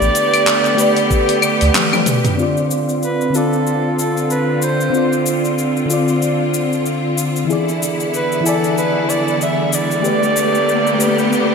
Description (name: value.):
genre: sunset chillout.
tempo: 94 BPM.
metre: 4/4.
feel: swing 57% on 16ths.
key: D dorian.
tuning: A4 = 440 Hz.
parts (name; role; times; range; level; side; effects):
mellow soprano saxophone; melody; 0.0-11.5 s; A4 to E5; -19 LUFS; right 1 dB; digital delay.
mellow FM electric piano; accompaniment; 0.0-11.5 s; D3 to G#5; -18 LUFS; moving between left 3 dB and right 3 dB; chorus, auto-pan, digital delay.
bright studio string section; sustained chords; 0.0-11.5 s; D3 to G4; -20 LUFS; equal; low-pass filter.
warm sub bass; bass; 0.0-1.7 s; A1 to D2; -16 LUFS; right 1 dB; none.
deep house drum kit; drums; 0.0-11.5 s; cabasa, claves, handclaps, hi-hat, toms; -20 LUFS; left 2 dB; overdrive, gated reverb.
electronic kick drum; drums; 1.1-1.3 s; none; -18 LUFS; right 1 dB; none.
riser; sound effects; 9.0-11.5 s; none; -23 LUFS; right 1 dB; none.
room: wet lush hall reverb, RT60 2.6 s.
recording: bright 1980s-style digital production.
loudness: -14 LUFS.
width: side -5 dB against mid.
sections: 0.0-2.4 A section; 2.4-11.5 B section.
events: kick drops out 1.7-2.4; drum fill 1.7-2.4; filter sweep on string section 2.4-11.5; riser 9.0-11.5.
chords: 0.0 A9sus4; 2.4 Dm7; 7.5 E7; 10.0 A9sus4.